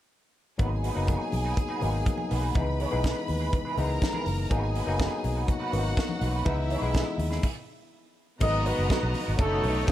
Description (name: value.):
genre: disco.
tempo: 123 BPM.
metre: 4/4.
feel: straight.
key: G# minor.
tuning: A4 = 440 Hz.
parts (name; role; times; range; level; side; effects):
rich studio violin section; second line; 0.6-9.9 s; A3 to B5; -34 LUFS; equal; none.
barky tine electric piano; accompaniment; 0.6-9.9 s; E3 to E4; -32 LUFS; left 4 dB; overdrive.
semi-hollow electric guitar; accompaniment; 0.6-9.9 s; B3 to C#5; -36 LUFS; right 5 dB; wah.
vintage muted fingered electric bass; bass; 0.6-9.8 s; F#1 to D#2; -29 LUFS; equal; none.
tight funk drum kit; drums; 0.6-9.9 s; crash cymbal, hi-hat, kick drum, snare drum; -30 LUFS; equal; none.
congas; percussion; 0.6-9.9 s; none; -40 LUFS; left 4 dB; none.
warm flugelhorn; melody; 8.4-9.9 s; G#4 to D#5; -30 LUFS; equal; none.
clear symphonic string section; sustained chords; 8.4-9.9 s; B2 to F#4; -35 LUFS; right 1 dB; none.
cowbell; percussion; 8.4-9.9 s; none; -43 LUFS; right 4 dB; none.
room: small room ambience.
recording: none.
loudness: -25 LUFS.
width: side -13 dB against mid.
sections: 0.6-8.4 A section; 8.4-9.9 B section.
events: stop 7.4-8.4.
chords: 0.6 G#m7; 2.6 C#m7; 4.5 G#m7; 6.5 C#m7; 8.4 G#m9; 9.4 B7/F#.